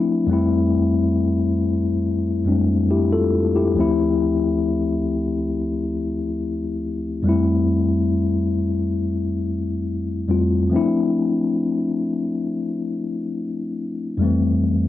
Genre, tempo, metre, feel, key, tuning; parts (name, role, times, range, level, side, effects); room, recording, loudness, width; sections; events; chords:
R&B; 69 BPM; 4/4; straight; A4 = 441 Hz
mellow tine electric piano; solo; 0.0-14.9 s; D2 to A4; -18 LUFS; left 2 dB; medium stereo tremolo, cassette tape
moderate small room reverb, RT60 0.6 s; home recording on cassette; -19 LUFS; side -13 dB against mid
0.0-3.8 A section; 3.8-14.9 B section
0.3 Fmaj9; 3.8 Dm9; 7.3 Fmaj9; 10.7 Dm9/F; 14.2 Fmaj9